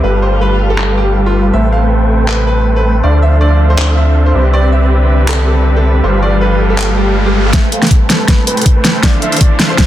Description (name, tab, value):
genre	future bass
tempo	160 BPM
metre	4/4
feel	swing 54% on 16ths, half-time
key	A minor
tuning	A4 = 440 Hz
part	clear baby grand piano	melody	0.0-9.9 s	F4 to F5	-19 LUFS	right 1 dB	sidechain pumping, low-pass filter, digital delay
part	warm chamber string section	sustained chords	0.0-9.9 s	C3 to B4	-22 LUFS	right 1 dB	sidechain pumping
part	supersaw chords	riff	0.0-9.9 s	G3 to A5	-16 LUFS	right 1 dB	sidechain pumping, low-pass filter
part	saturated sub bass	bass	0.0-7.5 s	G1 to D2	-11 LUFS	equal	sidechain pumping
part	pop drum kit	drums	0.8-9.9 s	handclaps, hi-hat, snare drum	-15 LUFS	equal	overdrive, low-pass filter on snare, low-pass filter on hats, low-pass filter on room
part	riser	sound effects	5.8-9.9 s	none	-22 LUFS	equal	none
part	electronic kick drum	drums	7.5-9.9 s	none	-10 LUFS	equal	overdrive
room	light reverb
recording	dense, heavily limited modern master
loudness	-9 LUFS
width	side -12 dB against mid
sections	0.0-7.5 A section; 7.5-9.9 B section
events	riser 5.8-7.5; build-up 7.5-9.9; drum fill 7.5-9.9; filter sweep on supersaw synth 7.5-9.9; filter sweep on grand piano 7.5-9.9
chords	0.0 G9; 1.5 Am9; 3.0 Dm9; 4.3 Cmaj9; 6.0 G9; 7.5 Am9; 9.0 Dm9